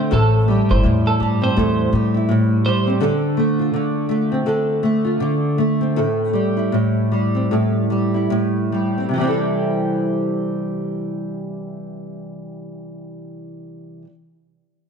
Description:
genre	acoustic pop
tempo	71-83 BPM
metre	4/4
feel	swing 60% on 16ths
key	C major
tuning	A4 = 440 Hz
part	nylon-string guitar	accompaniment	0.0-14.1 s	A2 to A4	-18 LUFS	equal	double-tracked left and right
part	twelve-string electric guitar	arpeggios	0.1-2.9 s	A4 to C5	-25 LUFS	right 4 dB	none
part	upright bass	bass	0.1-2.5 s	G1 to A2	-20 LUFS	left 1 dB	none
room	moderate echo chamber reverb, RT60 1.9 s, small room ambience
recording	dark, warm production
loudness	-16 LUFS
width	side -6 dB against mid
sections	0.0-9.2 A section; 9.2-12.6 B section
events	slowing down 3.0-9.2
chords	0.1 Am7; 3.0 Dm7; 9.2 C6

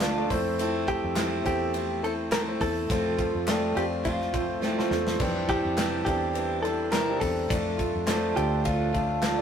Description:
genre	piano-driven pop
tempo	104 BPM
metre	4/4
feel	swing 56% on 16ths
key	F major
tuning	A4 = 440 Hz
part	direct-recorded clean electric guitar	melody	0.0-9.4 s	F4 to Bb4	-30 LUFS	left 1 dB	none
part	clear grand piano	accompaniment	0.0-9.4 s	A3 to F5	-30 LUFS	left 2 dB	none
part	picked steel-string acoustic guitar	riff	0.0-9.4 s	F2 to F4	-30 LUFS	right 3 dB	none
part	vintage muted fingered electric bass	bass	0.0-9.4 s	D2 to F2	-34 LUFS	equal	none
part	modern studio drum kit	drums	0.0-9.4 s	crash cymbal, handclaps, hi-hat, kick drum, ride cymbal, snare drum	-32 LUFS	equal	none
room	moderate stone room reverb, RT60 1.1 s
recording	rough rehearsal-room recording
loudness	-24 LUFS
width	side -8 dB against mid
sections	0.0-9.4 A section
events	drum fill 4.6-5.2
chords	0.3 Am; 2.9 F; 5.2 Cadd9; 7.5 Dm

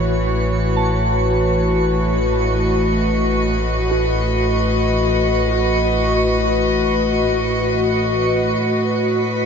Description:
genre	ambient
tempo	free time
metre	none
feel	none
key	A lydian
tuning	A4 = 440 Hz
part	warm studio string section	sustained chords	0.0-9.5 s	A2 to D#5	-17 LUFS	left 1 dB	none
part	warm sub bass	bass	0.0-9.5 s	A1	-24 LUFS	right 1 dB	none
part	twinkling granular texture	texture	0.0-9.5 s	B5 to C#6	-26 LUFS	right 3 dB	built-in reverb
part	soft synth bell	arpeggios	0.8-8.6 s	F#4 to A5	-28 LUFS	equal	chorus, phaser, tape echo
room	wet huge ambient reverb, RT60 8.8 s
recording	dark, warm production, nothing above 7.8 kHz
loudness	-15 LUFS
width	side -6 dB against mid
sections	0.0-8.6 A section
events	none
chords	0.0 A6; 8.6 A5

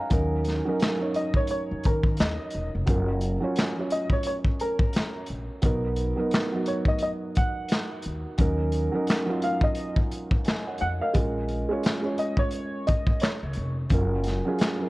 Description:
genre	lo-fi hip hop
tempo	87 BPM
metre	4/4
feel	swing 59% on 16ths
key	Eb minor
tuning	A4 = 440 Hz
part	felt-muted upright piano	accompaniment	0.0-14.9 s	Gb3 to Bb5	-29 LUFS	right 2 dB	cassette tape, low-pass filter
part	upright bass	bass	0.1-14.4 s	Fb1 to Eb3	-28 LUFS	equal	none
part	crunchy breakbeat drum kit	drums	0.1-14.8 s	handclaps, hi-hat, kick drum, snare drum	-25 LUFS	equal	none
part	warm upright piano	melody	1.2-13.7 s	Bb4 to F#5	-30 LUFS	equal	low-pass filter
room	light reverb, small room ambience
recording	worn, warbling old tape, cassette tape, warbly pitch drift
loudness	-23 LUFS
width	side -20 dB against mid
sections	0.0-2.9 A section; 2.9-14.9 A section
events	none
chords	0.0 Ebm7; 2.9 Gbmaj7; 5.6 Bmaj7; 8.4 Ebm7; 11.1 Bbm7; 13.9 Gbmaj7

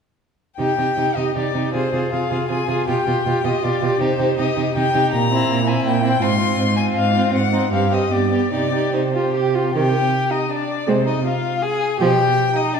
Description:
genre	quick classical-period movement for string quartet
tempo	158 BPM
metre	3/4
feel	rubato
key	C minor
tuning	A4 = 441 Hz
part	rich violin	melody	0.6-12.8 s	C5 to C6	-22 LUFS	left 5 dB	none
part	clear violin	second line	0.6-12.8 s	C4 to Ab4	-23 LUFS	right 1 dB	none
part	clear viola	accompaniment	0.6-12.2 s	Eb3 to G4	-23 LUFS	right 3 dB	none
part	rich cello	bass	0.6-12.3 s	G2 to C3	-22 LUFS	right 2 dB	none
room	wet scoring stage reverb, RT60 1.6 s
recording	recorded in a church or concert hall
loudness	-17 LUFS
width	side -6 dB against mid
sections	0.6-9.7 A section; 9.7-12.8 A section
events	none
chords	0.6 Cm; 1.7 Fm/C; 2.9 G7/B; 4.0 Cm; 5.1 C7/Bb; 6.2 Fm/Ab; 7.7 Cm/G; 8.1 G; 8.5 Cm; 10.9 Fm/C; 12.0 G7/B

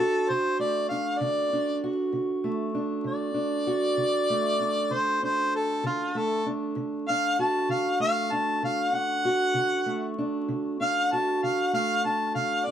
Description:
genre	acoustic country blues, solo or duo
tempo	65 BPM (dotted quarters)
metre	12/8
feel	straight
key	D mixolydian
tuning	A4 = 440 Hz
part	warm harmonica	melody	0.0-12.7 s	F4 to A5	-26 LUFS	left 1 dB	plate reverb
part	fingerpicked steel-string acoustic guitar	accompaniment	0.0-12.7 s	D3 to F#4	-28 LUFS	right 2 dB	none
room	moderate small room reverb, RT60 0.5 s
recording	dark, warm production, vinyl crackle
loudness	-24 LUFS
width	side -9 dB against mid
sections	0.0-12.7 A section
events	harmonica solo 0.0-12.7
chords	0.0 D

